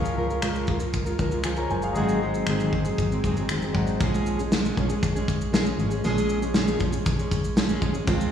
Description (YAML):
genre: acoustic pop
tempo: 118 BPM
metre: 4/4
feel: straight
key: Bb minor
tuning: A4 = 440 Hz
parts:
  - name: clear concert grand piano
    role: accompaniment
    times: 0.0-4.0 s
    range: Db4 to Bb5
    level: -32 LUFS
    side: left 4 dB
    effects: slapback echo
  - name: fingerpicked plugged-in steel-string acoustic guitar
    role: accompaniment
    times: 0.0-8.3 s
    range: Ab2 to Bb4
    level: -26 LUFS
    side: right 1 dB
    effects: slapback echo
  - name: solid FM bass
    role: bass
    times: 0.0-8.3 s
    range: F1 to Db2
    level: -29 LUFS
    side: left 1 dB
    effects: none
  - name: loose indie drum kit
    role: drums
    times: 0.1-8.3 s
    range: finger snaps, kick drum, shaker, snare drum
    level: -26 LUFS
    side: left 1 dB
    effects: none
room: light reverb, small room ambience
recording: live gig heard through the venue's PA, recital hall reverb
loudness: -22 LUFS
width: side -8 dB against mid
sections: 0.0-4.0 A section; 4.0-8.3 B section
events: none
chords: 0.0 Db6; 2.0 Ab7; 4.0 Bbm7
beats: 0.43 0.94 1.46 | 1.97 2.48 2.98 3.50 | 4.00 4.51 5.02 5.53 | 6.04 6.55 7.06 7.57 | 8.07